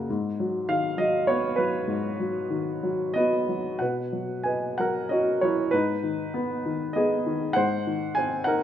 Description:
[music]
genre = classical, lyrical solo piano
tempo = 88-101 BPM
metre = 3/4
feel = rubato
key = G# dorian, B major from 3.8 s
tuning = A4 = 440 Hz
[part]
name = warm upright piano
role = solo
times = 0.0-8.6 s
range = F#2 to G#5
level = -24 LUFS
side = equal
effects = none
[sound]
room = moderate recital hall reverb, RT60 1.4 s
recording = none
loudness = -24 LUFS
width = side -10 dB against mid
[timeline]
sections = 0.0-3.8 A section; 3.8-8.6 B section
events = none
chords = 0.1 G#m7; 3.8 Badd9; 5.7 G#m; 7.6 G#7

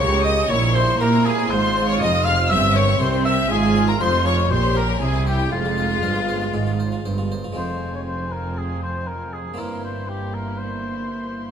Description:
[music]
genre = classical, baroque-style concerto movement with solo episodes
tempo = 119 BPM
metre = 4/4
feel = straight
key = F minor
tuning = A4 = 441 Hz
[part]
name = dark chamber violin section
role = melody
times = 0.0-11.5 s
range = F5 to F6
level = -27 LUFS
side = left 3 dB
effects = none
[part]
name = mellow oboe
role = melody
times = 0.0-11.5 s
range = F4 to F5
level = -25 LUFS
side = left 2 dB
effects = none
[part]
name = clear chamber violin section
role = second line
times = 0.0-11.5 s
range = C4 to F5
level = -28 LUFS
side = left 2 dB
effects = none
[part]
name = harpsichord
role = accompaniment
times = 0.0-11.5 s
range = F2 to C5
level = -31 LUFS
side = equal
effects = none
[part]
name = warm studio viola section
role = accompaniment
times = 0.0-11.5 s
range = F3 to G4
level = -29 LUFS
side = right 2 dB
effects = none
[part]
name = dark chamber cello section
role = bass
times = 0.0-11.5 s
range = F2 to Bb3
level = -24 LUFS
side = right 3 dB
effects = none
[part]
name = rich chamber double bass section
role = bass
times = 0.0-11.5 s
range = F1 to Bb2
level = -25 LUFS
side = right 2 dB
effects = none
[sound]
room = moderate concert hall reverb, RT60 1.8 s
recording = none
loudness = -18 LUFS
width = side -8 dB against mid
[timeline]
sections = 0.0-7.6 A section; 7.6-11.5 B section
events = none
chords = 0.5 C7/Bb; 1.5 Fm/Ab; 2.5 C5/G; 3.5 Fm/Ab; 4.5 Gdim/Bb; 5.0 C; 5.5 Fm; 9.6 C7/G

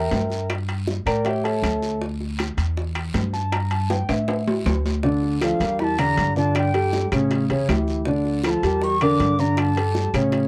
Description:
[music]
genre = latin, Cuban son and guajira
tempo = 159 BPM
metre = 4/4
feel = straight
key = D harmonic minor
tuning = A4 = 435 Hz
[part]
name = dark baby grand piano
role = arpeggios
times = 0.0-10.5 s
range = C#3 to Bb5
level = -24 LUFS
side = equal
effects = none
[part]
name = upright bass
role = bass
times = 0.0-10.5 s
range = D2 to A2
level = -28 LUFS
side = equal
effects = none
[part]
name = bongos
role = percussion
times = 0.1-10.5 s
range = none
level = -34 LUFS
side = equal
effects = none
[part]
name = guiro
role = percussion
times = 0.1-10.5 s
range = none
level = -42 LUFS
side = equal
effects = none
[part]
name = timbales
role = percussion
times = 0.1-10.5 s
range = none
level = -31 LUFS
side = equal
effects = none
[part]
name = claves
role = percussion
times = 0.5-10.3 s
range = none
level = -36 LUFS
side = equal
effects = none
[part]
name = wooden flute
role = melody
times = 5.4-10.2 s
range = F5 to D6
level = -27 LUFS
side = equal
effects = none
[part]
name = nylon-string guitar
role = second line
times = 5.4-10.1 s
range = D4 to Bb4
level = -33 LUFS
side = equal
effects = none
[sound]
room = little or no reverb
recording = dry, close 1970s-style studio recording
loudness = -22 LUFS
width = mono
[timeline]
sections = 0.0-5.0 A section; 5.0-10.5 B section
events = grand piano solo 0.0-5.0; drum fill 3.9-5.0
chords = 0.5 Gmadd9; 1.3 A7; 2.0 Dsus2; 2.8 Emadd11; 3.5 Gsus2; 4.3 A5; 5.0 Dm; 5.8 Em7b5; 6.6 Gsus2; 7.3 A7; 8.1 Dm; 8.8 Em7b5; 9.6 Gsus2

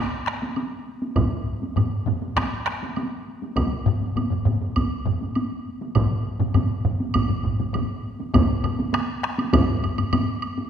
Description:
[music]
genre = japanese traditional, taiko drum ensemble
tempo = 100 BPM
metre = 4/4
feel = straight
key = none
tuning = none
[part]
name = taiko ensemble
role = percussion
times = 0.3-10.3 s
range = none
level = -27 LUFS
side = left 4 dB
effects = none
[part]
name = taiko ensemble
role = percussion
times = 0.3-7.9 s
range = none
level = -26 LUFS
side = right 2 dB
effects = none
[part]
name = taiko ensemble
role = percussion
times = 0.4-10.7 s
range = none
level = -27 LUFS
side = right 1 dB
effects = none
[part]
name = woodblock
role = percussion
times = 0.6-10.6 s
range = none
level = -33 LUFS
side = right 4 dB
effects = none
[part]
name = taiko ensemble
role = percussion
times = 1.2-9.7 s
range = none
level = -25 LUFS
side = right 1 dB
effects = none
[sound]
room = wet scoring stage reverb, RT60 1.7 s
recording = minimal, uncompressed stereo recording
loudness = -22 LUFS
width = side -8 dB against mid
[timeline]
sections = 0.0-8.3 A section; 8.3-10.7 B section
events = none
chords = none

